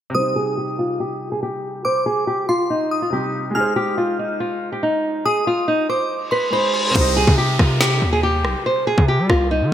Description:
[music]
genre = hip hop, drill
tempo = 141 BPM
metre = 4/4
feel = half-time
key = C minor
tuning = A4 = 440 Hz
[part]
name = nylon-string guitar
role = melody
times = 0.1-9.7 s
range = Eb4 to C5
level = -20 LUFS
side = equal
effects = low-pass filter
[part]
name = glassy synth bell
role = second line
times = 0.1-6.9 s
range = B5 to F6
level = -24 LUFS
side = left 1 dB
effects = chorus, digital delay
[part]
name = bright concert grand piano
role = accompaniment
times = 0.1-9.7 s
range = C3 to C5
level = -29 LUFS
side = right 1 dB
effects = low-pass filter
[part]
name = reverse cymbal and downlifter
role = sound effects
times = 6.3-9.7 s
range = none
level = -26 LUFS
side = left 1 dB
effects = none
[part]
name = distorted 808-style bass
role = bass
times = 7.0-9.7 s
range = B1 to G3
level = -20 LUFS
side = equal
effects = distortion
[part]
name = drill drum kit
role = drums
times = 7.0-9.4 s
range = crash cymbal, kick drum, rim click, snare drum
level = -19 LUFS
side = equal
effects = gated reverb
[sound]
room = moderate lush hall reverb, RT60 2.0 s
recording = bright 1980s-style digital production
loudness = -17 LUFS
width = side -10 dB against mid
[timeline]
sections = 0.1-7.0 A section; 7.0-9.7 B section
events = filter sweep 0.1-7.0; reverse cymbal 6.3-7.0; hi-hats muted 7.0-9.7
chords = 0.1 Cm; 3.6 Ab; 7.0 Cm

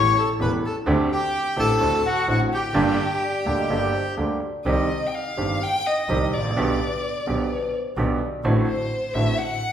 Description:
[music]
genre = tango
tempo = 128 BPM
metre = 4/4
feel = rubato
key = G harmonic minor, C harmonic minor from 4.7 s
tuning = A4 = 440 Hz
[part]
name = bandoneon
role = melody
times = 0.0-4.2 s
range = F#4 to C#6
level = -24 LUFS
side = left 2 dB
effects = none
[part]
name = warm violin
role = second line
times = 0.0-9.7 s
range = F#4 to G5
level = -27 LUFS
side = left 2 dB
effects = none
[part]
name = bright upright piano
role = accompaniment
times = 0.0-9.3 s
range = E1 to G4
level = -24 LUFS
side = right 2 dB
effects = none
[part]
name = rich double bass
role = bass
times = 0.0-9.3 s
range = E1 to D2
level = -27 LUFS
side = right 1 dB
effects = none
[part]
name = vibraphone with soft mallets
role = second line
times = 3.2-8.5 s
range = B4 to Eb5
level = -30 LUFS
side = left 3 dB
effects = none
[sound]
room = wet large studio reverb, RT60 1.3 s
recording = band playing live in one room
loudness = -20 LUFS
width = side -9 dB against mid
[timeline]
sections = 0.0-4.7 A section; 4.7-9.7 B section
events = violin solo 4.7-9.7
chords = 0.0 A7; 0.9 D7sus4; 1.8 D7; 2.7 Gm; 4.7 Cm; 6.6 G/B; 8.4 D7/A

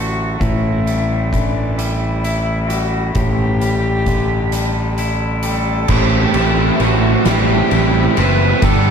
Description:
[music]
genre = post-rock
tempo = 44 BPM (dotted quarters)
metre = 6/8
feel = straight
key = A dorian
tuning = A4 = 441 Hz
[part]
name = rich cello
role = melody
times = 0.0-8.9 s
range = D4 to B4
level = -22 LUFS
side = equal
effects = diffuse ambient delay
[part]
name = twangy electric guitar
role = arpeggios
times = 0.0-8.9 s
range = A2 to F#4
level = -23 LUFS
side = left 4 dB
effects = lush chorus, diffuse ambient delay
[part]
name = fuzz fingered electric bass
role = bass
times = 0.0-8.9 s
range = F#1 to A1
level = -18 LUFS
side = equal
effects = overdrive
[part]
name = oversized low-tuned drum kit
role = drums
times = 0.4-8.8 s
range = crash cymbal, hi-hat, kick drum, ride cymbal, snare drum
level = -22 LUFS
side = equal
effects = none
[part]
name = cranked stack guitar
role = riff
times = 5.9-8.9 s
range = G2 to E4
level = -16 LUFS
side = right 3 dB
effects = overdrive, ensemble chorus
[sound]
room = moderate plate reverb, RT60 3.2 s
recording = dreamy mix soaked in reverb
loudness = -14 LUFS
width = side -7 dB against mid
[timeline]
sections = 0.0-5.9 A section; 5.9-8.9 B section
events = build-up 5.9-8.9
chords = 0.4 A5; 3.2 Em7/A; 5.9 Am7

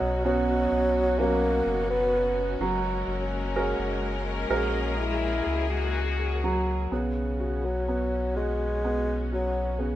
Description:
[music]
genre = pop ballad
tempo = 63 BPM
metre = 4/4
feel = straight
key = unclear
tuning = A4 = 440 Hz
[part]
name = mellow bassoon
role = melody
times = 0.0-10.0 s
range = C#3 to B3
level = -27 LUFS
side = equal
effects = none
[part]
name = felt-muted upright piano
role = accompaniment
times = 0.0-10.0 s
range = B2 to A#4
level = -30 LUFS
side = right 3 dB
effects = none
[part]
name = clear symphonic string section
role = sustained chords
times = 0.0-10.0 s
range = B2 to A#4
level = -35 LUFS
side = left 3 dB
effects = none
[part]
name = warm sub bass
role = bass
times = 0.0-10.0 s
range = F#1 to C#2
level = -30 LUFS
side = left 1 dB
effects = none
[part]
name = muted French horn section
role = second line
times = 2.6-6.9 s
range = G#3 to F#4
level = -32 LUFS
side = left 5 dB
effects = ping-pong delay
[sound]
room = light reverb, small room ambience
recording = rough home demo mix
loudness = -24 LUFS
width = side -13 dB against mid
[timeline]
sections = 0.0-6.9 A section; 6.9-10.0 B section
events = none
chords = 0.0 Bsus2; 2.6 F#add9; 6.9 Bsus2

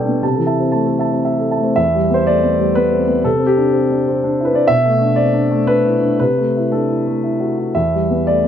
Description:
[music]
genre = neoclassical minimalist piano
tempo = 115-124 BPM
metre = 3/4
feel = rubato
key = unclear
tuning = A4 = 440 Hz
[part]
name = dark baby grand piano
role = solo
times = 0.0-8.5 s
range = E2 to A5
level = -14 LUFS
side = equal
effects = none
[sound]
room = moderate studio reverb, RT60 0.6 s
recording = none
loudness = -13 LUFS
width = side -9 dB against mid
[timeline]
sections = 0.0-1.8 A section; 1.8-8.5 B section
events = none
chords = 0.2 Am/C; 1.8 Em7; 3.2 Csus2; 4.7 Bmadd11; 6.2 Am/C; 7.7 Em7

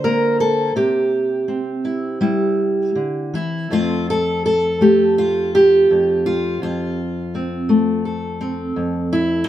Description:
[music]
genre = folk, solo fingerstyle acoustic guitar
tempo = 83 BPM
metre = 4/4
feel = rubato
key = F major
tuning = A4 = 438 Hz
[part]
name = fingerpicked steel-string acoustic guitar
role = solo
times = 0.0-9.5 s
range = F2 to C5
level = -16 LUFS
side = equal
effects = none
[sound]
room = moderate stone room reverb, RT60 1.0 s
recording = band playing live in one room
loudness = -16 LUFS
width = side -12 dB against mid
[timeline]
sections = 0.0-3.7 A section; 3.7-9.5 B section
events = none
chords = 0.0 Bb/D; 0.8 C; 3.7 F

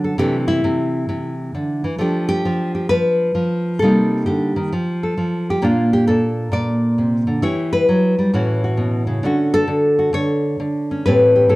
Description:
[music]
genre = solo jazz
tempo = 133 BPM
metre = 4/4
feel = swing 66% on 8ths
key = unclear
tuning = A4 = 440 Hz
[part]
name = nylon-string guitar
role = solo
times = 0.0-11.6 s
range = A2 to D5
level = -16 LUFS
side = equal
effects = none
[sound]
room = moderate club reverb, RT60 0.8 s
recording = dark, warm production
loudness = -16 LUFS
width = side -19 dB against mid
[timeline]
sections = 0.0-11.6 A section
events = none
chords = 0.2 C69; 2.0 F69; 3.8 Cm7; 4.7 F; 5.6 Bbmaj9; 7.4 Emadd9; 8.3 A69; 9.2 Dmaj7; 11.0 Am7

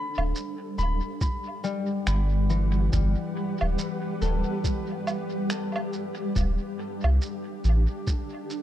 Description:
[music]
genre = ambient dub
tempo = 70 BPM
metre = 4/4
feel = swing 59% on 16ths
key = unclear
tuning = A4 = 445 Hz
[part]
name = granular cloud pad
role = sustained chords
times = 0.0-8.6 s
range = G3 to F#5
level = -32 LUFS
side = right 1 dB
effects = built-in reverb
[part]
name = concert harp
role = arpeggios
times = 0.0-7.5 s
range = E3 to B5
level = -34 LUFS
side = left 5 dB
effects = tape echo
[part]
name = soft dub sub bass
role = bass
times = 0.2-7.9 s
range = D1 to C2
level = -23 LUFS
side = equal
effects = none
[part]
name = electronic woodblock, shaker and finger snaps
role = drums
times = 0.2-8.6 s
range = none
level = -35 LUFS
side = right 2 dB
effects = studio ambience, dub echo
[part]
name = electronic kick drum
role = drums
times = 1.2-8.3 s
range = none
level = -27 LUFS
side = equal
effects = overdrive, studio ambience
[sound]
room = little or no reverb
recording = echo-heavy mix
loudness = -25 LUFS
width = side -12 dB against mid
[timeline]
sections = 0.0-8.6 A section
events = none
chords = 0.0 Gmaj7; 6.4 D7sus4

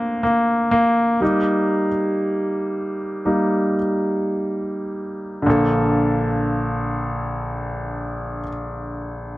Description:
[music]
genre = pop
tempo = 54-62 BPM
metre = 4/4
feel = straight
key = Bb major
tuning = A4 = 440 Hz
[part]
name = bright grand piano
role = accompaniment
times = 0.0-9.4 s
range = Bb1 to A4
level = -19 LUFS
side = equal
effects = none
[sound]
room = light reverb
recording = dry, close 1970s-style studio recording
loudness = -19 LUFS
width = side -18 dB against mid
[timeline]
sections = 0.0-5.5 A section; 5.5-9.4 B section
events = slowing down 0.0-5.5; grand piano solo 0.0-5.5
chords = 0.0 Bbmaj7; 1.2 Eb; 5.5 Bbmaj7

